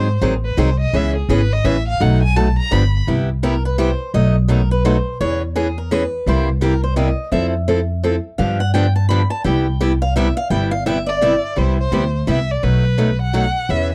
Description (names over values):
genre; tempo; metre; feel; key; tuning
acoustic string swing (jazz manouche); 170 BPM; 3/4; swing 61% on 8ths; C major from 3.1 s; A4 = 440 Hz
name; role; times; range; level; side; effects
warm violin; melody; 0.0-3.0, 11.1-13.9 s; G#4 to B5; -25 LUFS; equal; none
picked steel-string acoustic guitar; accompaniment; 0.0-13.9 s; B2 to A4; -22 LUFS; equal; none
upright bass; bass; 0.0-13.9 s; G1 to G#2; -20 LUFS; equal; none
picked swing-style acoustic guitar; second line; 3.4-11.3 s; G#4 to B5; -26 LUFS; equal; none
room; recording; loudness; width
little or no reverb; dry, close 1970s-style studio recording; -18 LUFS; mono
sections
0.0-3.1 A section; 3.1-11.6 A section; 11.6-13.9 B section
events
violin solo 0.0-3.1; steel-string acoustic guitar solo 3.1-11.6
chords
0.0 G#7; 0.9 C#m7; 2.0 B7; 2.7 G7; 3.1 Cmaj7; 4.1 B7; 5.2 E6; 6.3 C7; 7.3 Fmaj7; 8.4 G7; 9.4 Cmaj7; 12.6 B7